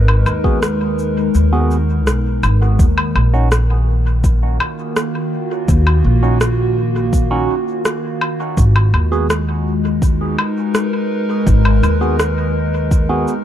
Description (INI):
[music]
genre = ambient dub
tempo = 83 BPM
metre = 4/4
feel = straight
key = Eb minor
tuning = A4 = 438 Hz
[part]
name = warbly tape-like pad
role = sustained chords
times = 0.0-13.4 s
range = Eb3 to Cb5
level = -20 LUFS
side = equal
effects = chorus, built-in reverb, phaser
[part]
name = upright bass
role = bass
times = 0.0-13.2 s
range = Ab1 to Eb2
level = -15 LUFS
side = equal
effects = none
[part]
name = electronic woodblock, cabasa and rim click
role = drums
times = 0.1-13.4 s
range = none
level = -21 LUFS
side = left 1 dB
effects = dub echo
[part]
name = barky tine electric piano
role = stabs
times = 0.4-13.3 s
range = Cb4 to Ab4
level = -24 LUFS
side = right 2 dB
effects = phaser, dub echo
[part]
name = electronic kick drum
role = drums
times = 0.4-13.1 s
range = none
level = -15 LUFS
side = equal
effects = none
[sound]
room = little or no reverb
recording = dark, warm production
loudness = -13 LUFS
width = side -11 dB against mid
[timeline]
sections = 0.0-2.8 A section; 2.8-13.4 B section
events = kick drops out 1.3-2.8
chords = 0.0 Abm7; 2.8 Ebm; 8.6 Abm7